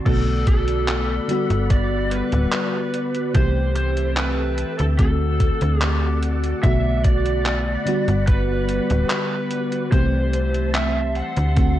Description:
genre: vaporwave.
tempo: 73 BPM.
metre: 4/4.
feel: straight.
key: G major.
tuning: A4 = 439 Hz.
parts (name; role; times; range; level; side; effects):
FM electric piano with soft pad layer; accompaniment; 0.0-11.8 s; D3 to G4; -24 LUFS; equal; wide subtle chorus.
soft string machine; sustained chords; 0.0-11.8 s; G3 to C6; -33 LUFS; equal; ensemble chorus, vintage 12-bit sampler grit.
lead guitar through a small cranked amp; melody; 0.1-11.8 s; A4 to F#5; -27 LUFS; left 1 dB; overdrive, tape echo.
slap-like FM bass; bass; 0.1-11.8 s; D1 to D2; -21 LUFS; equal; none.
detuned 8-bit digital drum machine; drums; 0.1-11.7 s; crash cymbal, handclaps, hi-hat; -28 LUFS; equal; low-pass filter on hats, low-pass filter on snare, low-pass filter on cymbals, low-pass filter on room, gated reverb.
electronic kick drum; drums; 0.1-11.7 s; none; -18 LUFS; equal; none.
room: light reverb.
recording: cassette tape.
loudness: -18 LUFS.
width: side -12 dB against mid.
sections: 0.1-11.8 A section.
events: none.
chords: 0.1 Bm7; 1.3 Gmaj7; 3.4 C6; 5.0 D7; 6.6 Bm7; 7.9 Gmaj7; 9.9 C6.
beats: | 0.06 0.89 1.71 2.53 | 3.35 4.17 5.00 5.82 | 6.64 7.46 8.28 9.11 | 9.93 10.75 11.57.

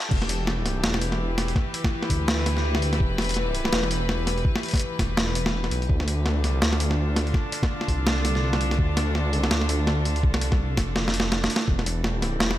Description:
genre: half-time drum and bass.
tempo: 166 BPM.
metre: 4/4.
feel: swing 58% on 16ths, half-time.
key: E phrygian.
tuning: A4 = 440 Hz.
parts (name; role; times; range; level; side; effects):
rich studio string section; sustained chords; 0.0-12.6 s; D3 to B4; -30 LUFS; left 1 dB; sidechain pumping.
dark detuned saw bass; bass; 0.1-12.6 s; E1 to D2; -25 LUFS; equal; none.
boom bap sampler-style drum kit; drums; 0.1-12.6 s; crash cymbal, hi-hat, snare drum; -26 LUFS; equal; none.
electronic kick drum; drums; 0.1-11.8 s; none; -24 LUFS; equal; high-pass filter on kick, high-pass filter on room.
room: digital ambience.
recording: high-pass filter.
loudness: -22 LUFS.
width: side -13 dB against mid.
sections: 0.1-12.6 A section.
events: drop 0.1-12.6; drum fill 11.0-11.7.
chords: 0.1 Em; 5.9 Dm; 11.7 Em.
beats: | 0.11 0.47 0.84 1.20 | 1.56 1.92 2.28 2.64 | 3.00 3.37 3.73 4.09 | 4.45 4.81 5.17 5.54 | 5.90 6.26 6.62 6.98 | 7.34 7.70 8.06 8.43 | 8.79 9.15 9.51 9.87 | 10.23 10.60 10.96 11.32 | 11.68 12.04 12.40.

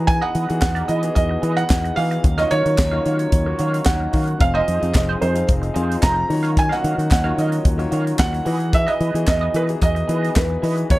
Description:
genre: disco.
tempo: 111 BPM.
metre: 4/4.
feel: straight.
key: unclear.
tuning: A4 = 440 Hz.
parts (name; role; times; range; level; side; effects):
felt-muted upright piano; melody; 0.0-11.0 s; B4 to Bb5; -22 LUFS; right 2 dB; tape echo.
clear baby grand piano; accompaniment; 0.0-10.9 s; Eb3 to F5; -29 LUFS; left 3 dB; none.
twangy electric guitar; accompaniment; 0.0-10.9 s; Eb4 to F5; -31 LUFS; right 4 dB; wah.
dark French horn section; sustained chords; 0.0-11.0 s; Eb3 to F5; -30 LUFS; left 2 dB; none.
fingered electric bass; bass; 0.0-11.0 s; F1 to E3; -21 LUFS; equal; none.
tight funk drum kit; drums; 0.1-11.0 s; handclaps, hi-hat, kick drum, snare drum; -19 LUFS; equal; none.
group handclap; percussion; 0.6-10.5 s; none; -36 LUFS; equal; none.
room: light reverb, small room ambience.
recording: dark, warm production.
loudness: -17 LUFS.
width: side -18 dB against mid.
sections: 0.0-11.0 A section.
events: none.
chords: 0.0 Emaj7; 2.2 Ebm9; 4.4 Fm7; 6.3 Ebm9; 8.5 Emaj7.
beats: | 0.08 0.62 1.16 1.70 | 2.24 2.78 3.32 3.86 | 4.41 4.95 5.49 6.03 | 6.57 7.11 7.65 8.19 | 8.74 9.28 9.82 10.36 | 10.90.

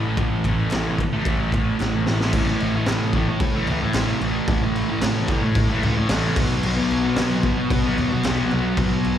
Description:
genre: garage rock duo or trio.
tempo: 112 BPM.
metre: 4/4.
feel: straight.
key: unclear.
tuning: A4 = 440 Hz.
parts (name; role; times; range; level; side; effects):
thick fuzz guitar; riff; 0.0-9.2 s; A2 to B3; -21 LUFS; equal; distortion, slapback echo.
growling picked electric bass; bass; 0.0-9.2 s; A1 to B2; -27 LUFS; equal; overdrive.
raw garage drum kit; drums; 0.2-9.2 s; crash cymbal, kick drum, ride cymbal, snare drum; -24 LUFS; equal; none.
group handclap; percussion; 0.7-8.4 s; none; -38 LUFS; right 1 dB; none.
room: small room ambience.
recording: live gig heard through the venue's PA, recital hall reverb.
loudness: -19 LUFS.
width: side -10 dB against mid.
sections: 0.0-2.3 A section; 2.3-9.2 B section.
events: drum fill 1.8-2.3.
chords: 0.0 A5; 6.4 B5.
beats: | 0.18 0.72 1.26 1.80 | 2.33 2.87 3.41 3.95 | 4.49 5.02 5.56 6.09 | 6.63 7.17 7.71 8.24 | 8.78.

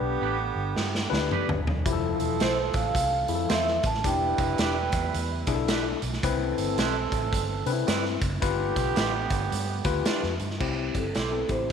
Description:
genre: uptempo 1960s-style soul.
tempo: 110 BPM.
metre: 4/4.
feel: swing 61% on 8ths.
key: C major.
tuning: A4 = 440 Hz.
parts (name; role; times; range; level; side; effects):
mellow horn section; second line; 0.0-10.4 s; D3 to B4; -32 LUFS; right 11 dB; none.
overdriven tine electric piano; accompaniment; 0.0-11.7 s; F3 to B4; -30 LUFS; left 12 dB; none.
vintage muted fingered electric bass; bass; 0.0-11.7 s; Eb1 to C3; -31 LUFS; equal; none.
twangy electric guitar; stabs; 0.2-11.3 s; G3 to C5; -35 LUFS; right 10 dB; phaser.
raw garage drum kit; drums; 0.8-11.7 s; crash cymbal, hi-hat, kick drum, snare drum, toms; -29 LUFS; right 1 dB; none.
vibraphone with soft mallets; melody; 2.4-5.1, 11.0-11.7 s; A4 to A5; -28 LUFS; right 3 dB; none.
room: light reverb, studio reverb.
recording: 1960s-style stereo with parts hard left and right.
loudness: -24 LUFS.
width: side -7 dB against mid.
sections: 0.0-10.6 A section; 10.6-11.7 B section.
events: drum fill 0.8-1.9.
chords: 0.0 G; 1.9 Fmaj7; 4.0 Em7; 6.2 Cmaj7; 8.4 G7; 10.6 C.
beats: 0.22 0.76 1.31 | 1.86 2.40 2.95 3.50 | 4.05 4.59 5.14 5.69 | 6.23 6.78 7.33 7.87 | 8.42 8.97 9.51 10.06 | 10.61 11.16 11.71.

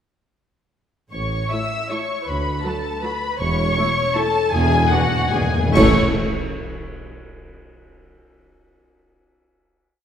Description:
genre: classical, orchestral ballroom waltz.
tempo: 139-170 BPM.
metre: 3/4.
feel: rubato.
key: A major.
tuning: A4 = 440 Hz.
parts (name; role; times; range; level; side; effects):
muted symphonic violin section; melody; 1.1-6.0 s; F#5 to E6; -23 LUFS; left 2 dB; none.
muted symphonic violin section; second line; 1.1-6.0 s; F#4 to E5; -24 LUFS; left 3 dB; none.
dark tuba; bass; 1.1-5.9 s; E1 to D2; -26 LUFS; right 2 dB; none.
muted symphonic cello section; bass; 1.1-6.0 s; D2 to A2; -26 LUFS; right 2 dB; none.
muted symphonic double bass section; bass; 1.1-6.0 s; E1 to D2; -26 LUFS; right 1 dB; none.
muted symphonic viola section; accompaniment; 1.5-6.0 s; F#3 to F#4; -25 LUFS; right 1 dB; none.
cymbal swell, clash cymbals and concert bass drum; percussion; 3.4-6.5 s; none; -30 LUFS; equal; none.
timpani; percussion; 4.5-5.9 s; E2 to A2; -24 LUFS; left 1 dB; none.
room: wet scoring stage reverb, RT60 1.9 s.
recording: heard from further back in the room.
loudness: -17 LUFS.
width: side -9 dB against mid.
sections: 1.1-5.8 A section; 5.8-7.0 final chord.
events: timpani fill 4.5-5.8; band accent 5.8-6.2.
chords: 1.1 A; 2.3 Bm/D; 3.4 A/E; 4.5 E7; 5.8 A5.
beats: | 1.12 1.51 1.90 | 2.27 2.64 3.03 | 3.39 3.77 4.16 | 4.54 4.92 5.34 | 5.76 6.16.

